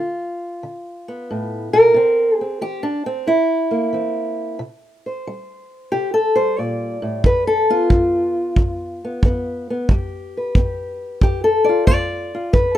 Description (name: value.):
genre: acoustic country blues, solo or duo.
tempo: 91 BPM.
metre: 4/4.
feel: swing 67% on 8ths.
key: G mixolydian.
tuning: A4 = 438 Hz.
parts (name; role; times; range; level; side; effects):
fingerpicked old ladder-braced acoustic guitar; melody; 0.0-12.8 s; G2 to D5; -18 LUFS; equal; none.
kick drum; drums; 7.2-12.7 s; none; -16 LUFS; equal; none.
room: small room ambience.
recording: rough home demo mix.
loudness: -16 LUFS.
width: side -12 dB against mid.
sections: 0.0-12.8 A section.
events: steel-string acoustic guitar solo 0.0-12.8.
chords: 0.0 G7 (rootless); 2.0 C7; 7.2 G7.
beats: 0.62 1.29 | 1.95 2.62 3.28 3.94 | 4.60 5.26 5.93 6.59 | 7.25 7.91 8.57 9.23 | 9.89 10.55 11.21 11.88 | 12.54.